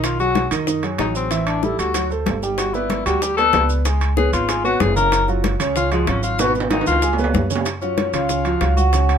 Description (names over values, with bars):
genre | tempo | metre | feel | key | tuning
Afro-Cuban jazz | 189 BPM | 4/4 | straight | unclear | A4 = 440 Hz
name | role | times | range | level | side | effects
warm tenor saxophone | second line | 0.0-9.2 s | G#3 to A#4 | -21 LUFS | left 5 dB | none
warm concert grand piano | accompaniment | 0.0-9.2 s | B2 to G#5 | -23 LUFS | right 4 dB | none
upright bass | bass | 0.0-9.2 s | F#1 to F#2 | -22 LUFS | equal | none
bongos | percussion | 0.0-9.2 s | none | -28 LUFS | left 9 dB | none
congas | percussion | 0.0-9.2 s | none | -28 LUFS | left 3 dB | none
maracas | percussion | 0.0-9.2 s | none | -32 LUFS | right 6 dB | none
timbales | percussion | 0.0-9.2 s | none | -27 LUFS | right 5 dB | none
vibraphone with soft mallets | melody | 7.8-9.2 s | C#5 to F#5 | -23 LUFS | right 2 dB | none
room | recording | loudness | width
light reverb | minimal, uncompressed stereo recording | -16 LUFS | side -8 dB against mid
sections
0.0-7.7 A section; 7.7-9.2 B section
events
tenor saxophone solo 0.0-7.7; drum fill 6.4-7.7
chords
0.0 B6; 1.3 A5; 1.9 D7; 2.6 G69; 3.9 C#7; 5.1 F#5; 6.4 G#m7; 7.0 C#5; 7.7 F#5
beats
| 0.04 0.36 0.68 1.00 | 1.31 1.63 1.95 2.27 | 2.58 2.90 3.22 3.54 | 3.85 4.17 4.49 4.80 | 5.12 5.44 5.76 6.08 | 6.39 6.71 7.03 7.34 | 7.66 7.98 8.30 8.61 | 8.93